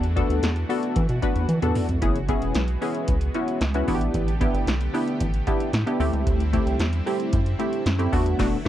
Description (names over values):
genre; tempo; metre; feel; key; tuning
early-eighties boogie funk; 113 BPM; 4/4; straight; unclear; A4 = 440 Hz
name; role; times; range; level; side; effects
funky polysynth comp; accompaniment; 0.0-8.7 s; A3 to B4; -25 LUFS; left 1 dB; chorus
lush unison pad; sustained chords; 0.0-8.7 s; D3 to G4; -33 LUFS; equal; chorus
rubbery square bass; bass; 0.0-8.7 s; E1 to E3; -24 LUFS; equal; none
electro analog drum machine; drums; 0.0-8.7 s; crash cymbal, hi-hat, kick drum, snare drum, toms; -26 LUFS; equal; none
room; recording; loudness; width
little or no reverb; dry, close 1970s-style studio recording; -21 LUFS; side -12 dB against mid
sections
0.0-8.7 A section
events
drum fill 1.5-2.0; band accent 8.4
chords
0.0 E9sus4; 2.0 F#9sus4; 3.9 A9sus4; 6.0 D9sus4; 8.1 E9sus4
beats
0.43 0.96 1.49 | 2.02 2.55 3.08 3.61 | 4.14 4.67 5.21 5.74 | 6.27 6.80 7.33 7.86 | 8.39